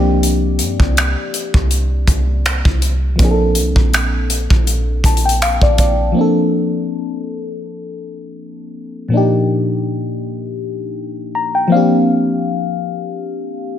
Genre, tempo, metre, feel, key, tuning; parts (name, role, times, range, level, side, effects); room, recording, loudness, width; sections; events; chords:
contemporary R&B; 81 BPM; 4/4; swing 54% on 16ths; Bb major; A4 = 440 Hz
mellow FM electric piano; accompaniment; 0.0-13.8 s; Bb2 to Bb5; -17 LUFS; left 2 dB; chorus, phaser
soft 808-style bass; bass; 0.0-6.1 s; Bb1 to G2; -16 LUFS; equal
modern studio drum kit; drums; 0.2-6.0 s; finger snaps, hi-hat, kick drum; -16 LUFS; equal
studio ambience; -14 LUFS; side -10 dB against mid
0.0-6.2 A section; 6.2-13.8 B section
FM electric piano fill 0.0, 4.7-6.2, 11.0-12.1
0.0 C7sus4; 3.2 Bbmaj7; 9.1 Ebmaj7/Bb; 11.7 C7sus4